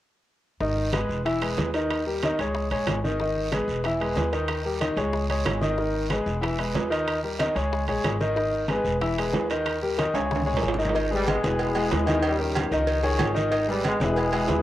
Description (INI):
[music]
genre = latin, salsa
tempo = 186 BPM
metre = 4/4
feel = straight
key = unclear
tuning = A4 = 438 Hz
[part]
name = clear grand piano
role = accompaniment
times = 0.6-14.6 s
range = D#3 to E5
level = -25 LUFS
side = left 1 dB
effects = cassette tape
[part]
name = upright bass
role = bass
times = 0.6-14.6 s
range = E1 to D#2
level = -30 LUFS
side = equal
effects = none
[part]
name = bongos and cowbell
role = percussion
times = 0.6-14.6 s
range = none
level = -38 LUFS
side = left 4 dB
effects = none
[part]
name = congas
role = percussion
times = 0.6-14.6 s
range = none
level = -31 LUFS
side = equal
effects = none
[part]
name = guiro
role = percussion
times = 0.6-14.6 s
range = none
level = -39 LUFS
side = right 5 dB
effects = none
[part]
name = timbales and agogo bells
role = percussion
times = 0.9-14.6 s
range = none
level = -32 LUFS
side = right 6 dB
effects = none
[part]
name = mellow trombone section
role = melody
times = 11.1-14.6 s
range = G2 to E4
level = -27 LUFS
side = left 2 dB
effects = none
[sound]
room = moderate spring reverb, RT60 1.4 s, studio ambience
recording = home recording on cassette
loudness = -23 LUFS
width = side -14 dB against mid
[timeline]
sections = 0.6-10.9 A section; 10.9-14.6 B section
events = drum fill 10.1-10.9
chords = 0.6 E; 1.9 D#7; 2.5 C#sus2; 3.2 E; 4.5 D#7; 5.1 C#sus2; 5.8 E; 7.1 D#7; 7.7 C#sus2; 8.4 E; 9.7 D#7; 10.3 C#sus2; 10.9 E; 12.2 D#7; 12.9 C#sus2; 13.5 E